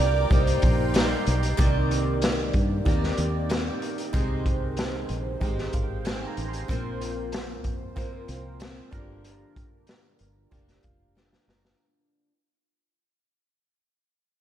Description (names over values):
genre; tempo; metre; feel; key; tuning
indie pop, bedroom pop; 94 BPM; 4/4; straight; C minor; A4 = 440 Hz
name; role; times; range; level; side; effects
hollow clarinet-like synth lead; melody; 0.0-1.3 s; C5 to D5; -29 LUFS; right 4 dB; lush chorus, ping-pong delay
picked steel-string acoustic guitar; accompaniment; 0.0-12.3 s; G2 to G4; -33 LUFS; left 2 dB; lush chorus, warbly pitch drift
warm analog keys; accompaniment; 0.0-11.8 s; C4 to C6; -34 LUFS; right 5 dB; chorus, phaser, cassette tape
lush unison pad; sustained chords; 0.0-1.6 s; Bb4 to D6; -33 LUFS; equal; chorus
fingered electric bass; bass; 0.0-11.7 s; F1 to G2; -28 LUFS; equal; none
raw garage drum kit; drums; 0.3-11.8 s; hi-hat, kick drum, snare drum; -27 LUFS; equal; vintage 12-bit sampler grit
room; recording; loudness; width
light reverb, small room ambience; none; -23 LUFS; side -11 dB against mid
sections
0.0-1.6 A section; 1.6-11.8 B section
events
fade-out 1.6-11.8; synth keys fill 5.4-6.7, 10.5-11.8; drum fill 11.2-11.8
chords
0.3 Cm7; 4.1 Abmaj7; 6.7 Bbsus2; 8.9 Gm7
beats
0.31 0.95 | 1.59 2.22 2.86 3.50 | 4.14 4.78 5.41 6.05 | 6.69 7.33 7.97 8.60 | 9.24 9.88 10.52 11.16